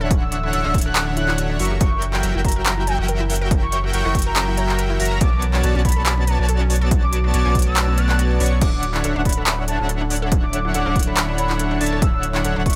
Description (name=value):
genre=future bass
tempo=141 BPM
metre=4/4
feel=swing 54% on 16ths, half-time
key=D major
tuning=A4 = 440 Hz
part: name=ethereal airy pad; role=sustained chords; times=0.0-12.8 s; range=D3 to E5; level=-36 LUFS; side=equal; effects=none
part: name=airy dreamy lead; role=arpeggios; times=0.0-12.8 s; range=F#5 to C#6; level=-35 LUFS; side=equal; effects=chorus, sidechain pumping
part: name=unison pluck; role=arpeggios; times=0.0-12.7 s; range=B3 to E5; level=-35 LUFS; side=equal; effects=sidechain pumping, tape echo
part: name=soft supersaw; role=riff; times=0.0-12.8 s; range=D3 to C#6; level=-27 LUFS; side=equal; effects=sidechain pumping
part: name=saturated sub bass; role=bass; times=0.0-12.8 s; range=D1 to B1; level=-24 LUFS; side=equal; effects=sidechain pumping
part: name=big-room dance drum kit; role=drums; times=0.1-12.8 s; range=crash cymbal, handclaps, hi-hat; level=-26 LUFS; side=equal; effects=none
part: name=electronic kick drum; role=drums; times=0.1-12.8 s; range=none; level=-21 LUFS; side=equal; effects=none
part: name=warm velvety synth lead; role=melody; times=0.2-12.8 s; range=G5 to F#6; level=-30 LUFS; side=equal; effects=chorus, vintage 12-bit sampler grit, sidechain pumping, delay
room=digital ambience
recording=none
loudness=-19 LUFS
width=mono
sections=0.0-12.8 A section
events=none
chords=0.0 Dmaj9; 1.6 F#7b9; 5.2 Bm9; 8.6 Dmaj9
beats=| 0.11 0.53 0.96 1.38 | 1.81 2.23 2.66 3.08 | 3.51 3.94 4.36 4.79 | 5.21 5.64 6.06 6.49 | 6.91 7.34 7.76 8.19 | 8.62 9.04 9.47 9.89 | 10.32 10.74 11.17 11.60 | 12.02 12.45